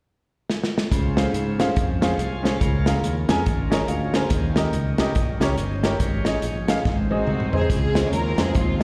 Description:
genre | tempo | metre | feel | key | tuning
uptempo gospel | 141 BPM | 4/4 | swing 61% on 8ths | Db major | A4 = 441 Hz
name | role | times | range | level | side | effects
warm soul drum kit | drums | 0.5-8.8 s | hi-hat, kick drum, snare drum, toms | -26 LUFS | equal | none
warm upright piano | accompaniment | 0.9-8.8 s | Ab2 to Ab5 | -28 LUFS | equal | slapback echo
bright tonewheel organ | sustained chords | 0.9-8.8 s | Db3 to Ab5 | -35 LUFS | equal | slow rotary speaker
modern bright fingered electric bass | bass | 0.9-8.8 s | G1 to Ab2 | -27 LUFS | equal | none
warm studio string section | melody | 7.1-8.8 s | Ab3 to Bb4 | -29 LUFS | equal | slapback echo
room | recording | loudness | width
light reverb, small room ambience | live gig heard through the venue's PA, recital hall reverb | -22 LUFS | mono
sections
0.9-7.7 A section; 7.7-8.8 B section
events
drum fill 0.5-0.9, 6.9-7.7; upright piano fill 3.5-4.3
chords
0.0 N.C.; 0.9 Dbmaj7; 2.6 Bbm7/Db; 4.3 Eb7; 6.0 Absus4; 6.9 Ab; 7.7 Dbmaj7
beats
0.07 0.49 | 0.92 1.34 1.77 2.19 | 2.61 3.04 3.46 3.89 | 4.31 4.74 5.16 5.58 | 6.01 6.43 6.86 7.28 | 7.71 8.13 8.55

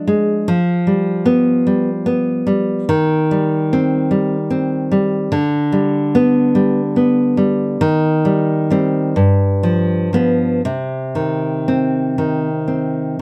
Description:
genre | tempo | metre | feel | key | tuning
romantic piece for solo classical guitar | 39-52 BPM (dotted quarters) | 6/8 | rubato | C minor | A4 = 441 Hz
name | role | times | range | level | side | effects
nylon-string guitar | solo | 0.0-13.2 s | G2 to D4 | -16 LUFS | equal | none
room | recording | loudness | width
moderate small room reverb, RT60 0.5 s | none | -16 LUFS | mono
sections
0.0-13.2 A section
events
none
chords
0.5 G7/F; 2.9 Cm/Eb; 5.3 G/D; 7.8 Cm/Eb; 9.2 G7; 10.6 Cm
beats
| 0.48 1.66 | 2.88 4.12 | 5.33 6.56 | 7.81 9.18 | 10.65 12.18

